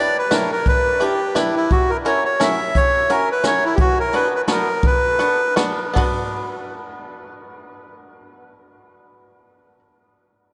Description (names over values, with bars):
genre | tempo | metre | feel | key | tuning
musette waltz | 151-175 BPM | 3/4 | swing 55% on 8ths | B harmonic minor | A4 = 440 Hz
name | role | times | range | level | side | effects
bandoneon | melody | 0.0-5.5 s | E4 to E5 | -21 LUFS | equal | diffuse ambient delay
bluegrass banjo | accompaniment | 0.0-9.8 s | B3 to B4 | -26 LUFS | equal | none
jazz brush drum kit | drums | 0.3-6.1 s | hi-hat, kick drum, snare drum, toms | -24 LUFS | equal | none
room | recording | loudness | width
wet cathedral reverb, RT60 6.5 s | dreamy mix soaked in reverb, nothing above 10.8 kHz | -18 LUFS | mono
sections
0.0-6.0 A section; 6.0-8.3 B section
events
slowing down 3.8-6.0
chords
0.0 Em7; 1.7 F#7; 3.8 Bm